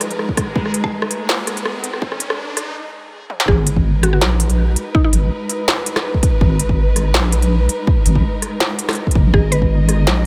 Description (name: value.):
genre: half-time drum and bass.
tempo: 164 BPM.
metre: 4/4.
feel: swing 54% on 16ths, half-time.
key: G# minor.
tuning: A4 = 440 Hz.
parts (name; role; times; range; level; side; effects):
warm symphonic string section; sustained chords; 0.0-10.3 s; G#3 to D#5; -28 LUFS; equal; sidechain pumping.
industrial drum kit; drums; 0.0-10.1 s; hi-hat, rim click, snare drum, toms; -22 LUFS; equal; none.
riser; sound effects; 0.0-2.8 s; none; -34 LUFS; equal; none.
backwards swelling texture; texture; 0.0-2.8 s; G#3 to G#4; -32 LUFS; equal; built-in reverb.
electronic kick drum; drums; 0.3-9.7 s; none; -19 LUFS; equal; none.
mallet-like synth pluck; melody; 3.5-5.1, 9.3-9.8 s; D#4 to B4; -26 LUFS; equal; chorus, dub echo.
deep soft wobble bass; bass; 3.5-10.3 s; F#1 to B1; -18 LUFS; equal; chorus.
room: little or no reverb.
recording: high-pass filter.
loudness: -17 LUFS.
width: mono.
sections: 0.0-3.5 A section; 3.5-10.3 B section.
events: build-up 0.0-3.5; riser 0.0-2.8; filter sweep 0.0-3.5; drum fill 3.3; drop 3.5-10.3.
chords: 0.0 G#madd9.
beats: 0.19 | 0.56 0.92 1.29 1.65 | 2.02 2.39 2.75 3.12 | 3.48 3.85 4.21 4.58 | 4.95 5.31 5.68 6.04 | 6.41 6.78 7.14 7.51 | 7.87 8.24 8.61 8.97 | 9.34 9.70 10.07.